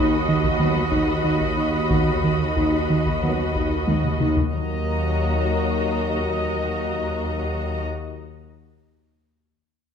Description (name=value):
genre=cinematic, suspense film score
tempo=94 BPM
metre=4/4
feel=straight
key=Eb minor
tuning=A4 = 440 Hz
part: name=muted symphonic violin section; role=melody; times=0.0-7.8 s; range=Bb5 to B5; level=-33 LUFS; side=left 5 dB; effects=none
part: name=muted symphonic violin section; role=second line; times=0.0-7.8 s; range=D#5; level=-28 LUFS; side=left 1 dB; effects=none
part: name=muted symphonic viola section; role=accompaniment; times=0.0-7.8 s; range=F#4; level=-30 LUFS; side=right 3 dB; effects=none
part: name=smooth synth bass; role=riff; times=0.0-4.4 s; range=D#3 to D#4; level=-23 LUFS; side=right 2 dB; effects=none
part: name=muted chamber double bass section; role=bass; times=0.0-7.8 s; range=D#2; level=-28 LUFS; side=equal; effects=none
part: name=muted studio cello section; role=bass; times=0.0-7.8 s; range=D#2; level=-28 LUFS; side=right 1 dB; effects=none
part: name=timpani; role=percussion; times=0.0-0.2, 4.5-8.3 s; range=none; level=barely audible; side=none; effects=none
part: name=solo taiko drums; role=drums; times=0.4-4.7 s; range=none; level=-28 LUFS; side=left 2 dB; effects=none
part: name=warm French horn section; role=sustained chords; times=0.6-7.8 s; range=F#3 to B3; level=-30 LUFS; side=left 3 dB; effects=none
room=wet scoring stage reverb, RT60 1.5 s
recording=minimal, uncompressed stereo recording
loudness=-20 LUFS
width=side -7 dB against mid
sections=0.0-4.5 A section; 4.5-7.1 B section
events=drum fill 3.9-4.5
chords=0.0 B/D#; 4.5 Ebm